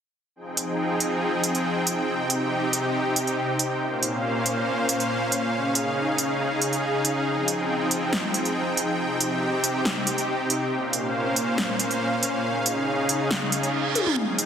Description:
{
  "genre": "heavy wobble dubstep",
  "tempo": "139 BPM",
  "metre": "4/4",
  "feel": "half-time",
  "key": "F minor",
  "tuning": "A4 = 438 Hz",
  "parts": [
    { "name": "supersaw pad", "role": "sustained chords", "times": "0.4-14.5 s", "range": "Bb2 to G5", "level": "-23 LUFS", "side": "equal", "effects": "none" },
    { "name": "big-room dance drum kit", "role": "drums", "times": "0.6-14.5 s", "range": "hi-hat, snare drum, toms", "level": "-25 LUFS", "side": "equal", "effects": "overdrive" },
    { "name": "reverse cymbal and riser", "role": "sound effects", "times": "13.5-14.5 s", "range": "none", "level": "-29 LUFS", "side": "right 7 dB", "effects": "none" }
  ],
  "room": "moderate lush hall reverb, RT60 1.7 s",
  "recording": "heavily compressed radio sound, multiband compression",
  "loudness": "-22 LUFS",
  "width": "side -8 dB against mid",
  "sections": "0.4-14.2 A section",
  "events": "reverse cymbal 13.5-14.2; drum fill 14.0; riser 14.2",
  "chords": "0.4 Fm7; 2.1 Cm; 3.8 Bbmadd9; 5.5 Dbadd9; 7.3 Fm7; 9.0 Cm; 10.7 Bbmadd9; 12.4 Dbadd9",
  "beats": "| 0.36 0.79 1.22 1.65 | 2.08 2.52 2.95 3.38 | 3.81 4.24 4.67 5.11 | 5.54 5.97 6.40 6.83 | 7.26 7.70 8.13 8.56 | 8.99 9.42 9.85 10.29 | 10.72 11.15 11.58 12.01 | 12.44 12.88 13.31 13.74 | 14.17"
}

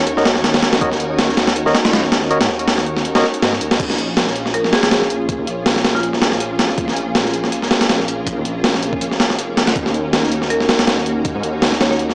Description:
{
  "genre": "drum and bass, jungle",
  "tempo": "161 BPM",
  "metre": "4/4",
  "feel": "swing 55% on 16ths",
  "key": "Bb minor",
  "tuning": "A4 = 436 Hz",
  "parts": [
    { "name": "marimba with hard mallets", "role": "melody", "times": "0.0-0.4, 4.5-6.2, 10.5-12.1 s", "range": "F4 to Db5", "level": "-23 LUFS", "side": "equal", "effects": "dub echo" },
    { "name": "soft string machine", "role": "sustained chords", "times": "0.0-12.1 s", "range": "Bb3 to Bb4", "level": "-22 LUFS", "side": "equal", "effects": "ensemble chorus" },
    { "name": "dark detuned saw bass", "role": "bass", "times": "0.0-12.1 s", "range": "F1 to Ab2", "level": "-25 LUFS", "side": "equal", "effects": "none" },
    { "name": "drifting glass-harmonics texture", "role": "texture", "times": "0.1-3.8 s", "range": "Db5 to Db6", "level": "-33 LUFS", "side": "equal", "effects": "none" },
    { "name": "breakbeat sampler-style drum kit", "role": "drums", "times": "0.1-12.1 s", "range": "crash cymbal, hi-hat, kick drum, snare drum", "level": "-16 LUFS", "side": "equal", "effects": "none" },
    { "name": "overdriven tine electric piano", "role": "stabs", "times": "0.2-3.2 s", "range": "Gb4 to Eb5", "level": "-20 LUFS", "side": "equal", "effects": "vintage 12-bit sampler grit, dub echo" }
  ],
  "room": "light reverb",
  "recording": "dry, gritty hardware recording, vinyl crackle, small speaker sound",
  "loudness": "-14 LUFS",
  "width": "side -32 dB against mid",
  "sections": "0.0-3.8 A section; 3.8-12.1 A section",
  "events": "drop 0.0-3.8, 3.8-12.1",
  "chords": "0.0 Ebm7; 3.8 Bbm7; 9.8 Ebm7",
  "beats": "0.07 0.44 | 0.81 1.19 1.56 1.93 | 2.31 2.68 3.05 3.42 | 3.80 4.17 4.54 4.91 | 5.29 5.66 6.03 6.41 | 6.78 7.15 7.52 7.89 | 8.27 8.64 9.01 9.39 | 9.76 10.13 10.50 10.88 | 11.25 11.62 11.99"
}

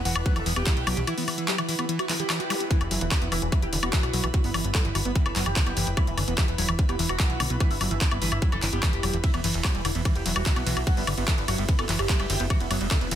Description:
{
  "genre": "psychedelic trance",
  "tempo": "147 BPM",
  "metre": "4/4",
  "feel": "straight",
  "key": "E minor",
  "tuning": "A4 = 442 Hz",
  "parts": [
    { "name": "plucky analog bass", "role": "bass", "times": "0.0-13.2 s", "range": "E1 to B1", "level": "-29 LUFS", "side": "equal", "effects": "none" },
    { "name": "airy breathy pad", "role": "texture", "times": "0.0-13.2 s", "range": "E4 to B5", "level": "-36 LUFS", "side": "right 2 dB", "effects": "chorus, sidechain pumping" },
    { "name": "overdriven synth lead", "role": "melody", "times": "0.1-13.2 s", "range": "E3 to D5", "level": "-32 LUFS", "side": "equal", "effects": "phaser, sidechain pumping, tape echo" },
    { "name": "overdriven acid bass", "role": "riff", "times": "0.1-13.2 s", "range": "D3 to F#4", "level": "-33 LUFS", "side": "equal", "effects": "distortion, auto-pan, sidechain pumping, tape echo" },
    { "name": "drum and bass drum kit", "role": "drums", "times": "0.1-13.2 s", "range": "handclaps, hi-hat, ride cymbal, woodblock", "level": "-28 LUFS", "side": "left 2 dB", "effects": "overdrive, studio reverb" },
    { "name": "electronic kick drum", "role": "drums", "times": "0.3-13.0 s", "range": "none", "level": "-24 LUFS", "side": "equal", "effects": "studio reverb" },
    { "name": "swell and zap", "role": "sound effects", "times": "2.0-2.7 s", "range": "none", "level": "-37 LUFS", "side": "right 1 dB", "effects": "none" }
  ],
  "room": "light reverb",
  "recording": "dense, heavily limited modern master",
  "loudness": "-22 LUFS",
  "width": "side -10 dB against mid",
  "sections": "0.0-13.2 A section",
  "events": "swell 2.0-2.7",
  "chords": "0.0 E5",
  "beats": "0.26 0.67 | 1.07 1.48 1.89 2.30 | 2.71 3.11 3.52 3.93 | 4.34 4.75 5.16 5.56 | 5.97 6.38 6.79 7.20 | 7.60 8.01 8.42 8.83 | 9.24 9.64 10.05 10.46 | 10.87 11.28 11.69 12.09 | 12.50 12.91"
}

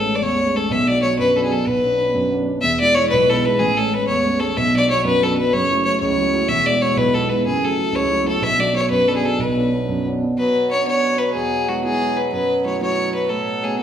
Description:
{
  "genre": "celtic folk, Celtic jig",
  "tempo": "124 BPM (dotted quarters)",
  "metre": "6/8",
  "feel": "straight",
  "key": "B dorian",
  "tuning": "A4 = 440 Hz",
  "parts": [
    { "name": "clear fiddle", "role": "melody", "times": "0.0-13.8 s", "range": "F#4 to E5", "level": "-18 LUFS", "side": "left 1 dB", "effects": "none" },
    { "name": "dark grand piano", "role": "accompaniment", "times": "0.0-13.8 s", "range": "E1 to E4", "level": "-20 LUFS", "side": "right 1 dB", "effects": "none" },
    { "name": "accordion", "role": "drone", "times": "10.4-13.8 s", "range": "B2 to F#3", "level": "-26 LUFS", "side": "right 4 dB", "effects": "none" }
  ],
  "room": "wet large studio reverb, RT60 1.2 s",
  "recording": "band playing live in one room",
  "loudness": "-16 LUFS",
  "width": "side -9 dB against mid",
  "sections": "0.0-2.6 A section; 2.6-10.4 A section; 10.4-13.8 B section",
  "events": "none",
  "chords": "0.0 Amaj7; 0.7 Bm; 1.7 Bmadd9; 2.6 E; 3.6 Amaj7; 4.6 Bm; 5.5 F#m7; 6.5 E; 7.5 F#m7; 8.4 Bm; 9.4 Bmadd9; 11.3 E; 12.3 F#m7; 13.3 Aadd9",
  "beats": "0.22 | 0.70 1.18 | 1.67 2.15 | 2.63 3.11 | 3.60 4.08 | 4.56 5.04 | 5.53 6.01 | 6.49 6.98 | 7.46 7.95 | 8.43 8.91 | 9.40 9.88 | 10.37 10.86 | 11.34 11.83 | 12.31 12.80 | 13.29 13.78"
}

